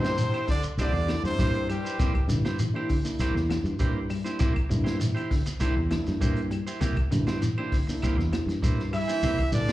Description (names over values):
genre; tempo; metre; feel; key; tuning
afrobeat; 99 BPM; 4/4; straight; C mixolydian; A4 = 438 Hz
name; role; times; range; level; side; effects
brilliant trumpet; melody; 0.0-2.3, 8.9-9.7 s; G4 to E5; -31 LUFS; right 1 dB; slapback echo
breathy tenor saxophone; second line; 0.0-2.3, 8.9-9.7 s; G3 to E4; -41 LUFS; right 3 dB; none
clear trombone section; second line; 0.0-2.3, 8.9-9.7 s; G2 to E3; -37 LUFS; equal; slapback echo
mellow reed electric piano; accompaniment; 0.0-9.7 s; Bb3 to G4; -34 LUFS; left 1 dB; slapback echo
clean electric guitar; arpeggios; 0.0-9.7 s; C3 to G3; -34 LUFS; left 3 dB; slapback echo
clean electric guitar; stabs; 0.0-9.7 s; Bb3 to C5; -34 LUFS; right 4 dB; slapback echo
fingered electric bass; bass; 0.0-9.7 s; C2 to G2; -27 LUFS; equal; none
crunchy breakbeat drum kit; drums; 0.0-9.7 s; hi-hat, kick drum, snare drum; -30 LUFS; equal; none
shekere; percussion; 0.0-9.7 s; none; -32 LUFS; right 1 dB; none
claves; percussion; 0.3-9.5 s; none; -45 LUFS; left 3 dB; slapback echo
room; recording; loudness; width
small room ambience; live gig heard through the venue's PA, club reverb; -24 LUFS; side -15 dB against mid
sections
0.0-9.7 A section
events
none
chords
0.0 C7